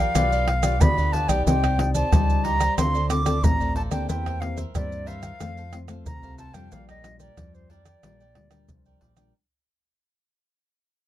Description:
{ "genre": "samba and choro", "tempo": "91 BPM", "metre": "4/4", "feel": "straight", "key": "Bb major", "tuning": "A4 = 440 Hz", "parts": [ { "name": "reedy concert flute", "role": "melody", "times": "0.0-9.0 s", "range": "C5 to D6", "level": "-27 LUFS", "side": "equal", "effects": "plate reverb" }, { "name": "cavaquinho", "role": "accompaniment", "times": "0.0-9.3 s", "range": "D4 to G5", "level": "-33 LUFS", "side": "right 4 dB", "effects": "none" }, { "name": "nylon-string guitar", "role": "accompaniment", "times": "0.0-9.3 s", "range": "Bb2 to D5", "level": "-31 LUFS", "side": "left 4 dB", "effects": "none" }, { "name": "deep dub fingered electric bass", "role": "bass", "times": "0.0-9.3 s", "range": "A1 to G2", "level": "-26 LUFS", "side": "equal", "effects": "none" }, { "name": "maracas, surdo, pandeiro and tamborim", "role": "percussion", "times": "0.2-9.3 s", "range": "none", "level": "-24 LUFS", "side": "equal", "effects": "none" } ], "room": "light reverb", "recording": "dark, warm production", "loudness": "-20 LUFS", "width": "side -13 dB against mid", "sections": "0.0-9.4 A section", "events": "fade-out 0.0-9.4", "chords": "0.2 G7/B; 1.5 Cmadd9; 2.8 Dm7; 4.1 C7/E; 5.4 F; 6.7 Bb6", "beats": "0.16 0.81 | 1.47 2.13 2.78 3.44 | 4.10 4.75 5.41 6.07 | 6.72 7.38 8.04 8.70" }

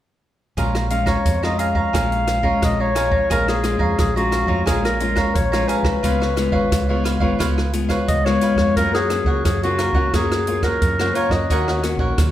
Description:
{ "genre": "samba and choro", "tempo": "88 BPM", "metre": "4/4", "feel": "straight", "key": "Bb minor", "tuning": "A4 = 439 Hz", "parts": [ { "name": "cavaquinho", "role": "accompaniment", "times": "0.6-12.3 s", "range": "Eb4 to Bb5", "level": "-25 LUFS", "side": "right 3 dB", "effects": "none" }, { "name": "nylon-string guitar", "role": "accompaniment", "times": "0.6-12.3 s", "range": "F2 to Gb4", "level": "-24 LUFS", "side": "left 4 dB", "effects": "none" }, { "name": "deep dub fingered electric bass", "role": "bass", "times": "0.6-12.3 s", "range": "Ab1 to Gb2", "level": "-24 LUFS", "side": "right 1 dB", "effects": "none" }, { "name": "compact cocktail drum kit", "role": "drums", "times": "0.6-12.3 s", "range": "hi-hat, kick drum, rim click", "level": "-23 LUFS", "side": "right 1 dB", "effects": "none" }, { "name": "mellow clarinet", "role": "melody", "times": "0.9-12.0 s", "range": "Gb4 to F5", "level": "-22 LUFS", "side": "left 2 dB", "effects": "none" } ], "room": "wet recital hall reverb, RT60 1.5 s", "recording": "recorded in a church or concert hall", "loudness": "-17 LUFS", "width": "side -12 dB against mid", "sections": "0.6-3.3 A section; 3.3-12.3 B section", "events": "none", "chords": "0.6 Bbm7; 6.0 Db7; 8.8 Gbmaj7; 11.5 Ebm7", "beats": "| 0.57 1.25 1.94 2.62 | 3.31 3.99 4.67 5.35 | 6.04 6.72 7.40 8.09 | 8.77 9.45 10.14 10.82 | 11.50 12.19" }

